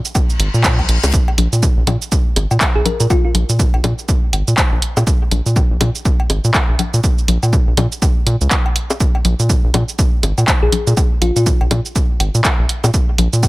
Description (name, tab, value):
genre	minimal techno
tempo	122 BPM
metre	4/4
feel	swing 59% on 16ths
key	Bb minor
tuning	A4 = 440 Hz
part	punchy analog drum machine	drums	0.1-13.5 s	handclaps, hi-hat, shaker	-19 LUFS	right 1 dB	none
part	cowbell, bongos and congas	percussion	0.1-13.5 s	none	-22 LUFS	left 4 dB	dub echo
part	reverse cymbal	sound effects	0.3-1.1 s	none	-25 LUFS	left 4 dB	none
part	electronic kick drum	drums	0.2-13.5 s	none	-16 LUFS	equal	none
part	rubbery square bass	bass	0.4-13.5 s	Ab1 to Bb2	-15 LUFS	equal	sidechain pumping
part	thumb-piano-like synth pluck	melody	2.8-3.3, 10.6-11.4 s	F4 to Bb4	-21 LUFS	left 2 dB	chorus, dub echo
room	little or no reverb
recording	none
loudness	-13 LUFS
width	side -20 dB against mid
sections	0.0-13.5 A section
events	reverse cymbal 0.3-1.1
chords	none